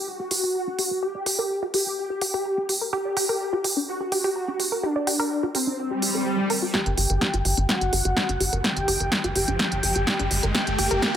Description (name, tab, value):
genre	melodic techno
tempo	126 BPM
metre	4/4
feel	straight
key	G harmonic minor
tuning	A4 = 440 Hz
part	wide unison lead	melody	0.0-11.2 s	C4 to G4	-28 LUFS	equal	ensemble chorus, sidechain pumping, tape echo
part	tight sequenced synth	arpeggios	0.0-11.1 s	D4 to Bb5	-30 LUFS	equal	chorus, sidechain pumping, tape echo
part	deep house drum kit	drums	0.3-11.1 s	hi-hat, snare drum	-25 LUFS	right 1 dB	none
part	swell and riser	sound effects	5.9-11.2 s	none	-30 LUFS	equal	none
part	soft supersaw	second line	6.7-11.2 s	F#5 to G5	-29 LUFS	left 2 dB	phaser, sidechain pumping, low-pass filter, tape echo
part	electronic kick drum	drums	6.7-11.1 s	none	-34 LUFS	equal	high-pass filter on kick, high-pass filter on room
part	tight sequencer bass	bass	6.9-11.0 s	G1	-26 LUFS	equal	sidechain pumping
room	moderate lush hall reverb, RT60 2.2 s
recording	none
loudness	-22 LUFS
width	side -9 dB against mid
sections	0.0-6.7 A section; 6.7-11.2 B section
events	swell 5.9-6.7; build-up 6.7-11.2; drum fill 6.7-11.2; riser 6.7-11.2; filter sweep on synth arpeggio sound 6.7-11.2; filter sweep on supersaw synth 6.7-11.2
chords	0.0 Gm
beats	0.07 0.55 | 1.02 1.50 1.98 2.45 | 2.93 3.40 3.88 4.36 | 4.83 5.31 5.79 6.26 | 6.74 7.21 7.69 8.17 | 8.64 9.12 9.60 10.07 | 10.55 11.02